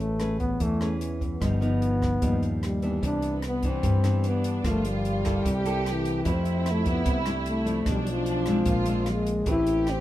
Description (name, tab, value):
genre	bossa nova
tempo	149 BPM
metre	4/4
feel	straight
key	C major from 3.0 s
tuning	A4 = 440 Hz
part	mellow trombone	melody	0.0-10.0 s	E3 to E4	-28 LUFS	left 2 dB	none
part	nylon-string guitar	accompaniment	0.0-10.0 s	G2 to B4	-29 LUFS	left 1 dB	none
part	modern bright fingered electric bass	bass	0.0-10.0 s	G1 to G2	-29 LUFS	right 1 dB	none
part	compact cocktail drum kit	drums	0.0-10.0 s	hi-hat, kick drum, rim click	-31 LUFS	right 1 dB	none
part	warm studio violin section	second line	3.0-10.0 s	B3 to G4	-33 LUFS	right 4 dB	none
room	light reverb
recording	minimal, uncompressed stereo recording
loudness	-23 LUFS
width	side -14 dB against mid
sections	0.0-3.0 A section; 3.0-10.0 B section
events	none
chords	0.0 Amaj9; 1.4 G7b13; 3.0 Cmaj9; 4.6 Gm7; 5.4 C6; 6.2 F69; 7.9 Bm7b5; 8.7 Bb9; 9.5 Am9